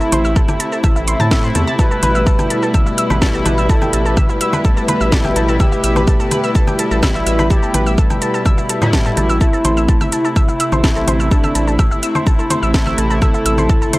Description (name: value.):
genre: melodic techno.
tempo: 126 BPM.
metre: 4/4.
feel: straight.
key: A minor.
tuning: A4 = 440 Hz.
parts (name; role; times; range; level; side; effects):
expressive synth lead; melody; 0.0-14.0 s; D4 to B4; -24 LUFS; right 1 dB; chorus, cassette tape, sidechain pumping, tape echo.
dark studio string section; sustained chords; 0.0-14.0 s; A3 to B4; -22 LUFS; equal; sidechain pumping.
analog pluck; arpeggios; 0.0-14.0 s; E4 to A6; -22 LUFS; equal; chorus, sidechain pumping, tape echo.
sync-sweep polysynth; stabs; 0.0-14.0 s; B2 to E4; -20 LUFS; left 1 dB; chorus, sidechain pumping, tape echo.
house drum kit; drums; 0.0-14.0 s; congas, hi-hat, shaker, snare drum, woodblock; -22 LUFS; equal; none.
round analog bass; bass; 0.1-13.9 s; G1 to A2; -20 LUFS; equal; tube saturation, sidechain pumping.
electronic kick drum; drums; 0.4-13.8 s; none; -14 LUFS; equal; none.
room: little or no reverb.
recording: dry, gritty hardware recording, transformer saturation.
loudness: -12 LUFS.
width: side -19 dB against mid.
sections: 0.0-14.0 A section.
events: none.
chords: 0.0 Am; 1.8 Em; 9.4 Am.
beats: 0.36 0.84 1.31 | 1.79 2.27 2.74 3.22 | 3.69 4.17 4.65 5.12 | 5.60 6.08 6.55 7.03 | 7.50 7.98 8.46 8.93 | 9.41 9.88 10.36 10.84 | 11.31 11.79 12.27 12.74 | 13.22 13.69.